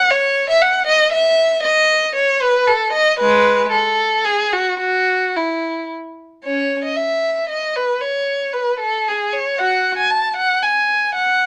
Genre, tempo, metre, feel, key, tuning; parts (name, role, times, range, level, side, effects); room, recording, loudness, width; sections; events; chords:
classical, baroque-style suite movement for unaccompanied violin; 115 BPM; 3/4; rubato; E major, C# minor from 6.4 s; A4 = 441 Hz
warm violin; solo; 0.0-11.5 s; G#3 to A5; -17 LUFS; equal
moderate studio reverb, RT60 0.7 s; -17 LUFS; mono
0.0-6.4 A section; 6.4-11.5 A section